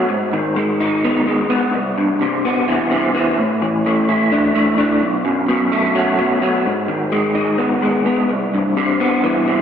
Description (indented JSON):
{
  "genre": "rock",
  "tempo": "256 BPM (eighths)",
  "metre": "7/8",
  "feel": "straight",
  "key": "unclear",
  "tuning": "A4 = 440 Hz",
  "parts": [
    { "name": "electric guitar through a small old amp", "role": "solo", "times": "0.0-9.6 s", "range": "B1 to E4", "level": "-15 LUFS", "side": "equal", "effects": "rotary speaker, tape echo" }
  ],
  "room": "wet lush hall reverb, RT60 2.6 s",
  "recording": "dreamy mix soaked in reverb, nothing above 10.4 kHz",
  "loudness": "-15 LUFS",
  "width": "side -8 dB against mid",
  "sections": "0.0-9.6 A section",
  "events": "none",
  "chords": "0.1 G#m; 1.7 Cmaj7; 3.4 Asus4; 5.0 B5; 6.7 G#m; 8.3 Cmaj7",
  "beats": "| 0.09 0.33 0.56 0.80 1.03 1.26 1.50 | 1.74 1.97 2.20 2.44 2.67 2.91 3.14 | 3.38 3.61 3.85 4.08 4.32 4.55 4.79 | 5.02 5.26 5.49 5.73 5.96 6.20 6.43 | 6.67 6.90 7.13 7.37 7.61 7.84 8.08 | 8.31 8.55 8.78 9.02 9.25 9.49"
}